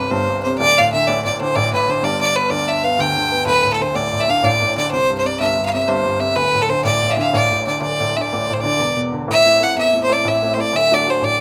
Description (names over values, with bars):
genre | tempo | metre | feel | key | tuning
celtic folk, Celtic slip jig | 124 BPM (dotted quarters) | 9/8 | straight | unclear | A4 = 440 Hz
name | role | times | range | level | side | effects
clear fiddle | melody | 0.0-11.4 s | A4 to G5 | -18 LUFS | equal | none
clear upright piano | accompaniment | 0.0-11.4 s | D1 to F#4 | -24 LUFS | equal | none
room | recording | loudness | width
moderate studio reverb, RT60 0.7 s | none | -17 LUFS | mono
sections
0.0-9.3 A section; 9.3-11.4 B section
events
none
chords
0.0 C5; 0.6 D5; 2.0 G; 3.5 D5; 4.9 C5; 6.4 D5; 8.8 E5; 9.3 Am; 10.7 D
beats
0.12 | 0.60 1.08 1.56 | 2.04 2.52 2.99 | 3.48 3.96 4.44 | 4.92 5.40 5.88 | 6.37 6.85 7.33 | 7.82 8.31 8.79 | 9.28 9.76 10.25 | 10.74 11.22